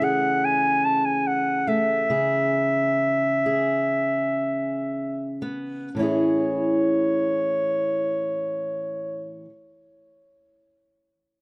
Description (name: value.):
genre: acoustic folk-pop ballad.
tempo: 56-74 BPM.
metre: 4/4.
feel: straight.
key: A major.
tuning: A4 = 440 Hz.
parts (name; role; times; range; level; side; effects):
warm clarinet; melody; 0.0-9.3 s; C#5 to A5; -25 LUFS; equal; none.
fingerpicked steel-string acoustic guitar; accompaniment; 0.0-9.5 s; A2 to G#4; -28 LUFS; equal; none.
room: light reverb.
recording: dark, warm production.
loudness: -24 LUFS.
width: mono.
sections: 0.0-5.9 A section; 5.9-10.2 B section.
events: slowing down 0.0-5.9.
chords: 0.0 Amaj7/C#; 2.1 C#m; 5.9 Amaj7.